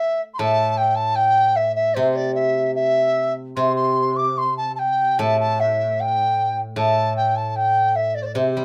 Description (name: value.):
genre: chinese traditional, Chinese chamber ensemble.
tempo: 76 BPM.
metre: 2/4.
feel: rubato.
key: C gong mode.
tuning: A4 = 438 Hz.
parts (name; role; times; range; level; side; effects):
mellow large dizi; melody; 0.0-8.6 s; C5 to D6; -21 LUFS; equal; none.
steel-string zither; accompaniment; 0.4-8.6 s; A2 to G3; -26 LUFS; equal; none.
room: light reverb.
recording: none.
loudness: -20 LUFS.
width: mono.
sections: 0.0-8.6 A section.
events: none.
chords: none.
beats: | 0.42 1.19 | 1.98 2.78 | 3.60 4.42 | 5.23 6.01 | 6.80 7.58 | 8.38.